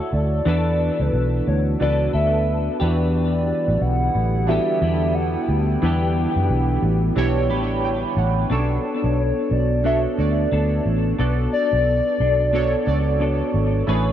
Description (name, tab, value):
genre	indie pop, bedroom pop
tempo	89 BPM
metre	4/4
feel	swing 60% on 16ths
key	unclear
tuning	A4 = 439 Hz
part	clean electric guitar	accompaniment	0.0-14.1 s	E3 to B4	-25 LUFS	left 4 dB	ensemble chorus, warbly pitch drift, tape echo
part	warbly lo-fi synth keys	accompaniment	0.0-14.1 s	C#4 to B5	-26 LUFS	right 6 dB	chorus, phaser, tape echo
part	hollow clarinet-like synth lead	melody	0.1-13.5 s	B4 to G5	-24 LUFS	left 1 dB	lush chorus, tape echo
part	vintage muted fingered electric bass	bass	0.1-14.1 s	G#1 to F#2	-21 LUFS	equal	none
part	hollow soft pad	sustained chords	3.5-8.5, 13.9-14.1 s	C#3 to G#4	-30 LUFS	right 1 dB	chorus
room	light reverb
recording	echo-heavy mix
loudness	-18 LUFS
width	side -10 dB against mid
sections	0.0-8.5 A section; 8.5-14.1 B section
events	synth keys fill 7.2-8.5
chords	0.5 E7sus4; 2.8 Em7; 8.5 Bm9